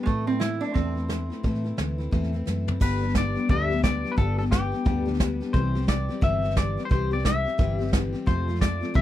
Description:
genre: honky-tonk and classic country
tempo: 176 BPM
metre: 4/4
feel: swing 62% on 8ths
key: G mixolydian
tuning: A4 = 440 Hz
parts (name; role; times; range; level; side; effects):
- lap resonator guitar; second line; 0.0-2.5 s; Ab3 to E4; -29 LUFS; right 6 dB; none
- picked steel-string acoustic guitar; accompaniment; 0.0-9.0 s; F2 to G4; -29 LUFS; left 4 dB; none
- vintage muted fingered electric bass; bass; 0.1-9.0 s; G1 to A2; -28 LUFS; equal; none
- soft brush drum kit; drums; 0.1-9.0 s; crash cymbal, hi-hat, kick drum, snare drum, toms; -26 LUFS; equal; none
- twangy electric guitar; melody; 2.8-9.0 s; G4 to E5; -29 LUFS; left 4 dB; none
room: little or no reverb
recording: none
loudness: -22 LUFS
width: side -13 dB against mid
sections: 0.0-2.8 A section; 2.8-9.0 B section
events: resonator guitar played with a steel bar solo 0.0-2.8; drum fill 2.5-2.8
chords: 0.1 Am; 2.8 G; 5.5 C; 8.3 F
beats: | 0.07 0.41 0.76 1.10 | 1.44 1.78 2.13 2.47 | 2.81 3.15 3.49 3.84 | 4.18 4.52 4.86 5.20 | 5.54 5.89 6.23 6.57 | 6.91 7.25 7.59 7.93 | 8.28 8.62 8.96

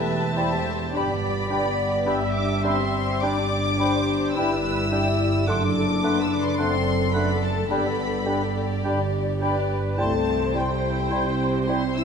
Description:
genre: classical, slow romantic movement for symphony orchestra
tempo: 53 BPM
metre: 4/4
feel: rubato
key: unclear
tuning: A4 = 440 Hz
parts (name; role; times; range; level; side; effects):
- rich studio violin section; melody; 0.0-12.0 s; G5 to E6; -30 LUFS; left 4 dB; none
- dark studio violin section; second line; 0.0-12.0 s; E4 to E5; -31 LUFS; left 3 dB; none
- dark symphonic viola section; accompaniment; 0.0-12.0 s; G4 to E5; -30 LUFS; right 2 dB; none
- mellow French horn section; sustained chords; 0.0-12.0 s; G3 to E4; -28 LUFS; left 5 dB; none
- warm chamber cello section; bass; 0.0-12.0 s; E2 to C3; -29 LUFS; right 4 dB; none
- warm symphonic double bass section; bass; 0.0-12.0 s; E1 to C2; -30 LUFS; right 3 dB; none
- warm clarinet; second line; 0.3-11.8 s; D4 to E4; -34 LUFS; left 3 dB; none
- hollow flute section; second line; 0.4-11.8 s; B5 to C6; -34 LUFS; left 4 dB; none
- warm oboe; second line; 0.4-11.9 s; F#5 to G5; -35 LUFS; right 2 dB; none
- mellow bassoon; accompaniment; 0.4-11.8 s; G3 to A3; -33 LUFS; right 1 dB; none
room: moderate concert hall reverb, RT60 2.3 s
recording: none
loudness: -21 LUFS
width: side -6 dB against mid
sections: 0.0-12.0 A section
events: none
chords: 0.0 Em; 0.9 G; 5.5 D7/F#; 7.7 G; 10.0 C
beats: | 0.95 2.07 3.23 4.36 | 5.48 6.60 7.71 8.85 | 9.99 11.11

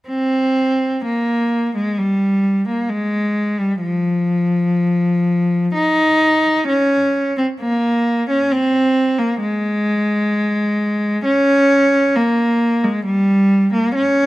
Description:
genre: classical, baroque-style suite movement for unaccompanied cello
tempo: 65 BPM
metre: 3/4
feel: uneven beats, rubato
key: F minor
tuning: A4 = 440 Hz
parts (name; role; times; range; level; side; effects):
- warm cello; solo; 0.1-14.3 s; F3 to Eb4; -14 LUFS; equal; none
room: moderate recital hall reverb, RT60 1.2 s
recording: close, detailed microphones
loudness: -14 LUFS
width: side -18 dB against mid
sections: 0.1-14.3 A section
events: none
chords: none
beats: | 0.08 1.05 1.98 | 2.90 3.82 4.76 | 5.75 6.68 7.60 | 8.51 9.40 10.30 | 11.25 12.17 13.06 | 13.96

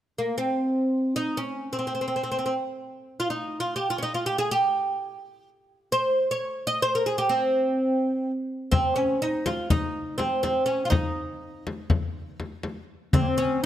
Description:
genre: Turkish makam ensemble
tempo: free time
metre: none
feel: none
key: C makam kurdi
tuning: A4 = 440 Hz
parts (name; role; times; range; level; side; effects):
- oud; melody; 0.2-13.7 s; Bb3 to Eb5; -24 LUFS; right 1 dB; none
- frame drum; percussion; 8.7-13.2 s; none; -26 LUFS; left 2 dB; none
- warm clarinet; second line; 13.1-13.7 s; Bb3 to C4; -27 LUFS; left 5 dB; none
- darbuka; percussion; 13.1-13.7 s; none; -26 LUFS; right 1 dB; none
room: light reverb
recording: close, detailed microphones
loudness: -23 LUFS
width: side -11 dB against mid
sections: 0.0-8.7 A section; 8.7-13.7 B section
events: none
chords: none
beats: free time

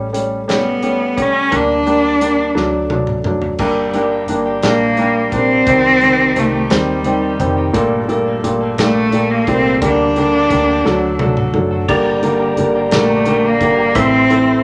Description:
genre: six-eight pop ballad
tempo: 58 BPM (dotted quarters)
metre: 6/8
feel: straight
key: G minor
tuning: A4 = 439 Hz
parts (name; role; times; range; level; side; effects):
- felt-muted upright piano; accompaniment; 0.0-14.6 s; Bb2 to D4; -19 LUFS; equal; none
- vintage muted fingered electric bass; bass; 0.0-14.6 s; F1 to Eb2; -28 LUFS; equal; none
- modern studio drum kit; drums; 0.1-14.5 s; crash cymbal, hi-hat, kick drum, snare drum, toms; -25 LUFS; equal; none
- clear cello; melody; 0.5-14.6 s; G3 to D4; -17 LUFS; equal; none
- direct-recorded clean electric guitar; arpeggios; 3.6-14.6 s; G2 to A4; -27 LUFS; equal; none
- percussive tonewheel organ; sustained chords; 11.9-14.6 s; G4 to C6; -22 LUFS; equal; fast rotary speaker
room: moderate large studio reverb, RT60 0.7 s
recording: none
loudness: -15 LUFS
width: mono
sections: 0.0-3.6 A section; 3.6-14.6 B section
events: drum fill 2.6-3.6, 10.9-11.9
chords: 0.0 A7; 1.5 Gm/D; 2.6 D; 3.6 Gm; 5.7 Cm; 7.7 Gmadd9; 9.8 Gm/D; 10.9 D; 11.9 Gm; 14.0 Am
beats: 0.49 | 1.52 2.56 | 3.60 4.64 | 5.67 6.71 | 7.75 8.78 | 9.82 10.85 | 11.89 12.92 | 13.96

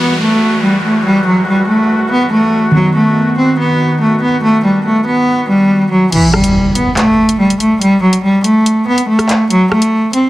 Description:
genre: hip hop, drill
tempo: 142 BPM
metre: 4/4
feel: half-time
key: unclear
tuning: A4 = 440 Hz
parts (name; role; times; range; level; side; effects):
- rich cello; melody; 0.0-10.3 s; E3 to C4; -10 LUFS; equal; none
- glassy digital keys; accompaniment; 0.0-6.1 s; D#3 to F#4; -18 LUFS; equal; chorus
- warm woodwind section; sustained chords; 0.0-6.1 s; E2 to F#4; -22 LUFS; equal; none
- downlifter and impact; sound effects; 0.0-2.7, 6.1-7.8 s; none; -20 LUFS; equal; none
- drill drum kit; drums; 6.1-10.2 s; crash cymbal, handclaps, hi-hat, rim click; -17 LUFS; equal; none
room: little or no reverb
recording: dense, heavily limited modern master, vinyl crackle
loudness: -9 LUFS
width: side -16 dB against mid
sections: 0.0-6.1 A section; 6.1-10.3 B section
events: kick muted 6.1-10.3; impact 6.1-7.8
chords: 0.0 Emadd9; 2.7 B; 6.1 N.C.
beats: 0.21 0.63 | 1.05 1.48 1.90 2.32 | 2.75 3.17 3.59 4.01 | 4.43 4.86 5.28 5.70 | 6.12 6.55 6.97 7.39 | 7.82 8.24 8.66 9.08 | 9.51 9.93

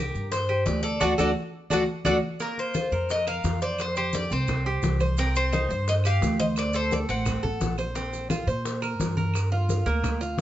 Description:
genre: latin, Cuban son and guajira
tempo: 173 BPM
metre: 4/4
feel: straight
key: unclear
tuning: A4 = 440 Hz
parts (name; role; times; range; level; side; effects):
- Cuban tres; melody; 0.0-7.7 s; F#4 to F#5; -28 LUFS; left 2 dB; none
- Cuban tres; arpeggios; 0.0-10.4 s; Bb3 to C5; -30 LUFS; right 2 dB; none
- upright bass; bass; 0.0-10.4 s; A1 to Bb2; -27 LUFS; right 1 dB; none
- congas; percussion; 0.1-10.4 s; none; -31 LUFS; left 1 dB; none
- maracas; percussion; 0.2-10.4 s; none; -42 LUFS; right 6 dB; none
- bongos; percussion; 0.3-10.4 s; none; -37 LUFS; left 5 dB; none
- claves; percussion; 0.5-10.2 s; none; -40 LUFS; right 3 dB; none
room: light reverb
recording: nothing above 7.8 kHz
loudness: -23 LUFS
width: side -12 dB against mid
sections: 0.0-2.4 A section; 2.4-10.4 B section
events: band accent 1.0-2.4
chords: 0.0 Csus2; 1.0 D; 2.4 Bbsus2; 3.8 Fsus2; 5.2 Cm; 6.6 D7; 8.0 Bbsus2; 9.3 Gm7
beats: 0.32 0.67 | 1.01 1.36 1.71 2.06 | 2.40 2.75 3.10 3.44 | 3.79 4.14 4.48 4.83 | 5.18 5.53 5.87 6.22 | 6.57 6.91 7.26 7.61 | 7.96 8.30 8.65 9.00 | 9.34 9.69 10.04 10.39

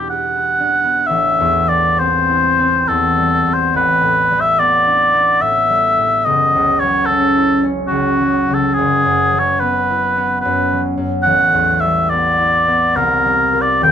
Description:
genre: classical, impressionist duo for oboe and harp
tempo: 60-75 BPM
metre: 3/4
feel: rubato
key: A dorian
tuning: A4 = 440 Hz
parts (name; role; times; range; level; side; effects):
- mellow oboe; melody; 0.0-13.9 s; F#4 to G5; -13 LUFS; left 1 dB; none
- concert harp; accompaniment; 0.0-13.9 s; D#1 to E5; -18 LUFS; equal; none
room: moderate studio reverb, RT60 0.6 s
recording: minimal, uncompressed stereo recording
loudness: -12 LUFS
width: side -9 dB against mid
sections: 0.0-1.1 A section; 1.1-13.9 B section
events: none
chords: 0.0 Em7; 1.1 Am7; 3.7 Gadd9/A; 6.3 F#5; 8.7 Esus2/F#; 11.2 A9sus4; 12.9 C7sus4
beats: 0.09 | 1.06 1.98 2.87 | 3.73 4.59 5.42 | 6.26 7.07 7.90 | 8.75 9.59 10.42 | 11.24 12.09 12.95 | 13.82

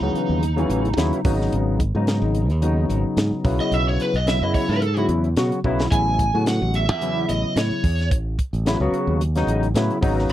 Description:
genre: electric jazz fusion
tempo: 109 BPM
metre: 4/4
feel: swing 55% on 16ths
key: unclear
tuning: A4 = 440 Hz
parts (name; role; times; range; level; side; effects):
- lead guitar through a small cranked amp; melody; 0.0-8.1 s; D#4 to G#5; -25 LUFS; right 2 dB; overdrive, slapback echo
- barky tine electric piano; accompaniment; 0.0-10.3 s; C#3 to F#4; -23 LUFS; left 2 dB; overdrive, ensemble chorus
- modern bright fingered electric bass; bass; 0.0-10.3 s; G#1 to B2; -22 LUFS; equal; none
- tight funk drum kit; drums; 0.2-10.3 s; hi-hat, kick drum, snare drum; -24 LUFS; equal; none
room: little or no reverb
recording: dry, close 1970s-style studio recording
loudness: -18 LUFS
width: side -12 dB against mid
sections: 0.0-10.3 A section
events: lead electric guitar solo 0.0-10.3; drum fill 5.6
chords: 0.0 F#m7/A; 1.2 G#m7; 3.4 Bsus24; 5.9 Amaj9; 8.1 F#m7/A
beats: 0.42 0.97 | 1.52 2.07 2.62 3.17 | 3.72 4.27 4.82 5.37 | 5.92 6.46 7.01 7.56 | 8.11 8.66 9.20 9.75 | 10.30

